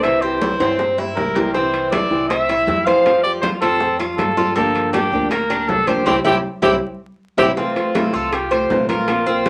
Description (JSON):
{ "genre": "latin, Cuban son and guajira", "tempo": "159 BPM", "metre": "4/4", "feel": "straight", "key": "F major", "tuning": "A4 = 439 Hz", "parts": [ { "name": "warm trumpet", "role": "melody", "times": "0.0-9.5 s", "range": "F4 to F5", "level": "-23 LUFS", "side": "equal", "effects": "none" }, { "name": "flamenco guitar", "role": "accompaniment", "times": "0.0-9.5 s", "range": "C3 to G4", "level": "-25 LUFS", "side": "equal", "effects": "none" }, { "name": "Cuban tres", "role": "arpeggios", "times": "0.0-9.5 s", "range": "Bb3 to C5", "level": "-22 LUFS", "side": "equal", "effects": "none" }, { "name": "upright bass", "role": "bass", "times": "0.0-9.5 s", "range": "Bb1 to G2", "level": "-35 LUFS", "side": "equal", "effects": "none" }, { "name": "bongos", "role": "percussion", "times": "0.0-9.5 s", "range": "none", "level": "-32 LUFS", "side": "equal", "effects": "none" }, { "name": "congas", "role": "percussion", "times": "0.0-9.5 s", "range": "none", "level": "-30 LUFS", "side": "equal", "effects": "none" }, { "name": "timbales", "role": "percussion", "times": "0.0-9.5 s", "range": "none", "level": "-30 LUFS", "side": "equal", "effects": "none" } ], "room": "wet club reverb, RT60 0.5 s", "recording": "vinyl crackle", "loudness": "-18 LUFS", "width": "mono", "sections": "0.0-7.6 A section; 7.6-9.5 B section", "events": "drum fill 0.4-1.5, 6.1-7.6; band accent 6.1-7.6", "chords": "0.0 C; 3.1 Fadd9; 4.6 Gm7; 6.1 C; 7.6 Fmaj7" }